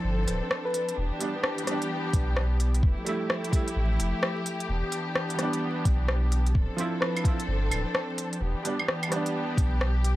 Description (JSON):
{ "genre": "future garage", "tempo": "129 BPM", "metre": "4/4", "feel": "swing 62% on 16ths", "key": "E phrygian", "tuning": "A4 = 440 Hz", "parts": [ { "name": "dark studio string section", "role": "sustained chords", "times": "0.0-10.2 s", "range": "E3 to A4", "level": "-32 LUFS", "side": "left 1 dB", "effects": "sidechain pumping" }, { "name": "soft dub sub bass", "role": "bass", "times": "0.0-10.2 s", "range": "D1 to B1", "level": "-26 LUFS", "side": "equal", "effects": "sidechain pumping" }, { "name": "organic electronic drum kit", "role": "drums", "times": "0.3-10.2 s", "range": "claves, hi-hat, rim click", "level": "-30 LUFS", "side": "equal", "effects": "none" }, { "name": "soft struck synth lead", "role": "melody", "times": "0.7-1.0, 7.0-7.3 s", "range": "B4", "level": "-37 LUFS", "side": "left 2 dB", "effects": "chorus, tape echo" }, { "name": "felt-muted upright piano", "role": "accompaniment", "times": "1.2-10.2 s", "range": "F3 to E4", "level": "-34 LUFS", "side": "right 3 dB", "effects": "sidechain pumping, analog delay" }, { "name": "electronic kick drum", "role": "drums", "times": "2.1-9.7 s", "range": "none", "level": "-24 LUFS", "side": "equal", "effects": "none" } ], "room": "little or no reverb", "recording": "dry, gritty hardware recording, vinyl crackle", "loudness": "-25 LUFS", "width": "side -16 dB against mid", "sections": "0.0-10.2 A section", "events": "none", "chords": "0.0 Dm7; 1.0 Em7; 2.8 Fmaj9; 4.7 Em7; 6.6 Dm7; 8.4 Em7" }